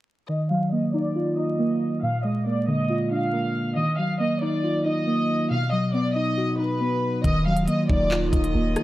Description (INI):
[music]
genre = hip hop, drill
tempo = 138 BPM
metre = 4/4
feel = half-time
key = Eb harmonic minor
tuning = A4 = 440 Hz
[part]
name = warm studio violin section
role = melody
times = 0.3-8.8 s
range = B4 to F5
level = -28 LUFS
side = equal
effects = low-pass filter
[part]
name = muted felt-like synth keys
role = accompaniment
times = 0.3-8.8 s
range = Bb2 to F#4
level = -23 LUFS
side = equal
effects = chorus, low-pass filter
[part]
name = warbly tape-like pad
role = sustained chords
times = 7.6-8.8 s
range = Eb3 to F4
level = -35 LUFS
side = right 3 dB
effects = chorus, built-in reverb, phaser
[part]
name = hard-hitting 808-style bass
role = bass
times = 7.2-8.8 s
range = D1 to Eb1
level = -26 LUFS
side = equal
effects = none
[part]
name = drill drum kit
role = drums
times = 7.2-8.8 s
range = handclaps, hi-hat, kick drum, rim click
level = -25 LUFS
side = equal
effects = none
[sound]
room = digital ambience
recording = dry, gritty hardware recording, vinyl crackle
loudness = -21 LUFS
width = side -16 dB against mid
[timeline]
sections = 0.3-7.2 A section; 7.2-8.8 B section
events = filter sweep 0.3-7.2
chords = 0.3 Ebmadd9; 2.0 Bb7; 3.8 Ebmadd9; 5.5 B; 7.2 Ebmadd9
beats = | 0.29 0.72 1.16 1.59 | 2.02 2.46 2.89 3.33 | 3.76 4.20 4.63 5.07 | 5.50 5.94 6.37 6.81 | 7.24 7.68 8.11 8.55